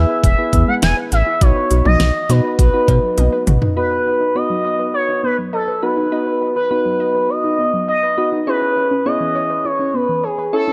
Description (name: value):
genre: synth-pop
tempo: 102 BPM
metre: 4/4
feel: straight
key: unclear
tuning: A4 = 438 Hz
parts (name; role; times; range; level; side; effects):
- expressive portamento lead; melody; 0.0-10.7 s; G#4 to G#5; -20 LUFS; equal; chorus, tape echo
- soft electric-piano-like synth keys; accompaniment; 0.0-10.7 s; B3 to C#5; -25 LUFS; equal; chorus, tape echo
- warbly dusty pluck; arpeggios; 0.0-10.7 s; E3 to E5; -27 LUFS; equal; chorus, tape echo
- round analog bass; bass; 0.0-3.6 s; E1 to B2; -17 LUFS; equal; none
- pop drum kit; drums; 0.2-3.8 s; cowbell, hi-hat, kick drum, snare drum, toms; -19 LUFS; equal; tape echo
room: light reverb, digital ambience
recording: echo-heavy mix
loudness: -17 LUFS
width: mono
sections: 0.0-3.8 A section; 3.8-10.7 B section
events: drum fill 3.2-3.8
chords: 0.0 E; 1.4 B; 8.5 C#m7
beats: 0.24 0.82 | 1.41 2.00 2.59 3.18 | 3.77 4.36 4.94 5.53 | 6.12 6.71 7.30 7.88 | 8.47 9.06 9.65 10.24